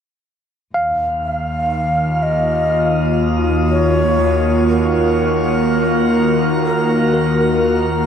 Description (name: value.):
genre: ambient.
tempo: 61 BPM.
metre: 4/4.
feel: straight.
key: Eb minor.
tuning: A4 = 440 Hz.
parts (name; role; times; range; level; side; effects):
warbly tape-like pad; sustained chords; 1.3-8.1 s; Eb3 to Gb4; -17 LUFS; equal; chorus, built-in reverb, phaser.
bright tine electric piano; arpeggios; 0.7-8.1 s; Bb4 to F5; -24 LUFS; equal; tape echo.
warm chamber cello section; bass; 0.7-8.1 s; Eb2; -21 LUFS; equal; none.
drifting glass-harmonics texture; texture; 1.8-8.1 s; F6; -33 LUFS; equal; chorus, built-in reverb.
breathy hollow long shakuhachi; melody; 1.2-8.1 s; Bb4 to F5; -19 LUFS; equal; tape echo.
room: wet shimmer reverb, RT60 8.7 s.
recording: dark, warm production.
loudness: -14 LUFS.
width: side -8 dB against mid.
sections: 0.7-8.1 A section.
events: fade-in on synth texture 0.7-8.1.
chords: 0.7 Ebmadd9.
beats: | 0.74 1.72 2.71 3.69 | 4.67 5.66 6.64 7.62.